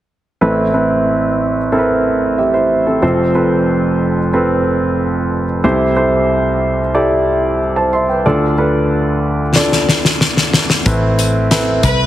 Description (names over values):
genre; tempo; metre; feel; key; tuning
piano-driven pop; 92 BPM; 4/4; straight; A minor; A4 = 436 Hz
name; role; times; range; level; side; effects
warm grand piano; accompaniment; 0.4-12.1 s; F1 to C6; -13 LUFS; right 1 dB; none
loose indie drum kit; drums; 9.6-12.0 s; hi-hat, kick drum, snare drum; -14 LUFS; left 2 dB; none
vintage muted picked electric bass; bass; 10.9-12.1 s; A1 to C2; -16 LUFS; left 1 dB; none
rich studio violin section; melody; 11.8-12.1 s; B4; -15 LUFS; left 1 dB; none
room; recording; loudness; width
moderate plate reverb, RT60 2.9 s; heavily compressed radio sound, multiband compression; -12 LUFS; side -13 dB against mid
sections
0.4-10.9 A section; 10.9-12.1 B section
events
drum fill 9.6-10.9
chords
0.4 Amadd9; 3.0 F; 5.6 C6; 8.2 Dm; 10.9 Amadd9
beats
| 0.41 1.07 1.72 2.37 | 3.02 3.68 4.33 4.98 | 5.64 6.29 6.94 7.59 | 8.25 8.90 9.55 10.21 | 10.86 11.51